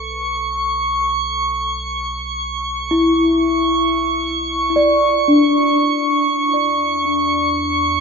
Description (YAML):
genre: ambient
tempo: free time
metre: none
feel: none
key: B minor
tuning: A4 = 440 Hz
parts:
  - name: celesta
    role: arpeggios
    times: 0.0-8.0 s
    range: D4 to D5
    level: -16 LUFS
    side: left 1 dB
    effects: ping-pong delay, shimmer reverb
  - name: warm sub bass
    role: bass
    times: 0.0-8.0 s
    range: B1 to E2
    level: -33 LUFS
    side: right 1 dB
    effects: none
  - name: drifting glass-harmonics texture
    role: texture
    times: 0.0-8.0 s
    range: C#6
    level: -18 LUFS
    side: right 1 dB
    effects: chorus, built-in reverb, shimmer reverb
room: wet cathedral reverb, RT60 5.2 s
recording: in a vast, echoing space, nothing above 8.0 kHz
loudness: -15 LUFS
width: side -5 dB against mid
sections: 0.0-8.0 A section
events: fade-in on sub bass 0.0-8.0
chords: 0.0 Bm9; 6.0 E5